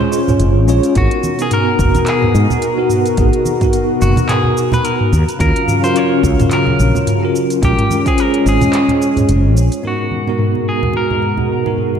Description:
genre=sunset chillout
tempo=108 BPM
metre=4/4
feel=swing 57% on 16ths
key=G# dorian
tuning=A4 = 440 Hz
part: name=clean electric guitar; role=melody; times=0.0-11.8 s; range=F#4 to C#5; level=-21 LUFS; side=left 1 dB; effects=tape echo
part: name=bell-like tine electric piano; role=accompaniment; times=0.0-12.0 s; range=G#2 to C#5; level=-18 LUFS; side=equal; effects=medium stereo tremolo, auto-pan, diffuse ambient delay
part: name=lush unison pad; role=sustained chords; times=0.0-12.0 s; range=B2 to E#5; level=-18 LUFS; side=equal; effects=chorus
part: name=congas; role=percussion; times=0.0-12.0 s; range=none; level=-21 LUFS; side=right 3 dB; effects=none
part: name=smooth R&B drum kit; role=drums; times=0.1-11.9 s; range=cabasa, handclaps, hi-hat, toms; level=-22 LUFS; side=equal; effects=none
part: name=mellow fretless electric bass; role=bass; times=0.4-9.7 s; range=E#1 to G#2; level=-13 LUFS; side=equal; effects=tube saturation
part: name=electronic kick drum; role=drums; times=1.0-8.2 s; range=none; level=-18 LUFS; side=equal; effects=overdrive
room=wet lush hall reverb, RT60 1.8 s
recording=dreamy mix soaked in reverb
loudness=-12 LUFS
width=side -8 dB against mid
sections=0.0-9.8 A section; 9.8-12.0 B section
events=none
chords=0.0 A#m9 (rootless); 1.0 G#m9; 5.1 D#m9 (rootless); 7.6 A#m9; 9.8 G#m9

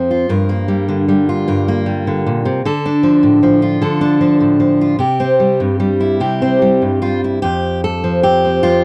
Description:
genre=folk, solo fingerstyle acoustic guitar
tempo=51 BPM (dotted quarters)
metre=6/8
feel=rubato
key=F major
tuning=A4 = 440 Hz
part: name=fingerpicked steel-string acoustic guitar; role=solo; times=0.0-8.8 s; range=F2 to Bb4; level=-15 LUFS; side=equal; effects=none
room=little or no reverb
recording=dry, close 1970s-style studio recording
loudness=-15 LUFS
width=mono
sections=0.0-7.4 A section; 7.4-8.8 B section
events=none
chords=0.3 Gm7; 2.6 Dm; 5.0 C; 7.4 F5

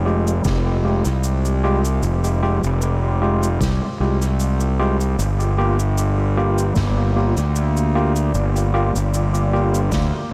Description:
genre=ambient dub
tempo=76 BPM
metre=4/4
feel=swing 54% on 16ths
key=F dorian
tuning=A4 = 439 Hz
part: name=deep dark ambient pad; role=sustained chords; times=1.1-10.3 s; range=Ab3 to G5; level=-34 LUFS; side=equal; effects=none
part: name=fuzz fingered electric bass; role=bass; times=0.0-10.1 s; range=F1 to D2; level=-20 LUFS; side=equal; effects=overdrive
part: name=overdriven tine electric piano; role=stabs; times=0.1-9.8 s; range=Ab3 to G4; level=-26 LUFS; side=equal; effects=dub echo
part: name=cabasa and snare drum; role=drums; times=0.3-10.1 s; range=none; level=-34 LUFS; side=equal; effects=dub echo
part: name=electronic kick drum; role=drums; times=0.5-10.1 s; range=none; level=-27 LUFS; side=equal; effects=overdrive
room=light reverb, small room ambience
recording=none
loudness=-19 LUFS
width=mono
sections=0.0-10.3 A section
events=none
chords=0.0 Fmadd9; 5.2 Gm7

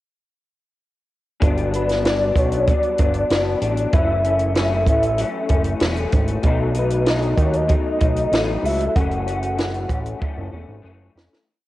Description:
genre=indie pop, bedroom pop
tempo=96 BPM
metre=4/4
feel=straight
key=F# dorian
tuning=A4 = 440 Hz
part: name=electric guitar through a small old amp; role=accompaniment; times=1.4-11.5 s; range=F#2 to D#4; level=-24 LUFS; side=left 4 dB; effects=ensemble chorus, vibrato effect, cassette tape
part: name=fat analog bass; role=bass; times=1.4-11.3 s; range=E1 to D#2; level=-23 LUFS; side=right 1 dB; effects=none
part: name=compact cocktail drum kit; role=drums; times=1.4-11.5 s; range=hi-hat, kick drum, snare drum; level=-20 LUFS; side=right 1 dB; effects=cassette tape
part: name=soft octave-layered synth lead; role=melody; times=1.7-10.8 s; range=B4 to F#5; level=-23 LUFS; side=equal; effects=tremolo, ensemble chorus, cassette tape
room=light reverb, small room ambience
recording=home recording on cassette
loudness=-17 LUFS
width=side -16 dB against mid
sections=1.4-11.5 A section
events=fade-out 9.0-11.5; drum fill 10.2-11.5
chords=1.4 Gmaj7; 3.9 F#m7; 6.4 B7; 9.0 F#m7

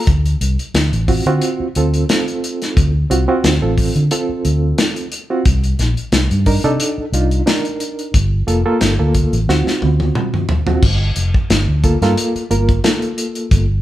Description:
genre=straight-eighth soul blues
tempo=89 BPM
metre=4/4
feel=swing 54% on 16ths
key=G minor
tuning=A4 = 440 Hz
part: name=reed electric piano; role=accompaniment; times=0.0-13.7 s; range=Bb3 to Bb4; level=-19 LUFS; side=right 2 dB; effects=overdrive, fast tremolo
part: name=vintage muted fingered electric bass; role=bass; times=0.1-13.8 s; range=F1 to D3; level=-16 LUFS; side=equal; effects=none
part: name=warm soul drum kit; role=drums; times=0.1-13.7 s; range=crash cymbal, hi-hat, kick drum, snare drum, toms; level=-17 LUFS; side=equal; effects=none
room=light reverb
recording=band playing live in one room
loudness=-14 LUFS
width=side -14 dB against mid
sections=0.0-10.8 A section; 10.8-13.8 B section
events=drum fill 9.5-10.8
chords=0.1 D7#9; 5.5 Cm7; 8.1 Gm7; 9.5 D7#9; 10.8 Gm7

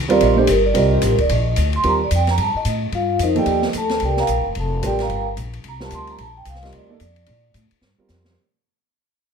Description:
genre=modal jazz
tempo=221 BPM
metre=4/4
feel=swing 61% on 8ths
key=unclear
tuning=A4 = 441 Hz
part: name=upright bass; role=bass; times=0.0-8.4 s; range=Eb1 to Bb2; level=-22 LUFS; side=left 1 dB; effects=none
part: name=vibraphone with soft mallets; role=melody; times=0.1-7.5 s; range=Eb4 to C6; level=-20 LUFS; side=right 1 dB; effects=none
part: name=dark baby grand piano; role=accompaniment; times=0.1-8.3 s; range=F3 to D5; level=-20 LUFS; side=right 4 dB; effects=none
part: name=open jazz drum kit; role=drums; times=0.1-8.3 s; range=hi-hat, kick drum, ride cymbal, snare drum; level=-28 LUFS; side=left 2 dB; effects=none
room=light reverb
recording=none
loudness=-16 LUFS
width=side -6 dB against mid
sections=0.0-8.4 A section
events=fade-out 0.0-8.4; vibraphone solo 0.0-8.4; drum fill 7.8-8.4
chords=0.0 Cm9; 4.0 Gm7

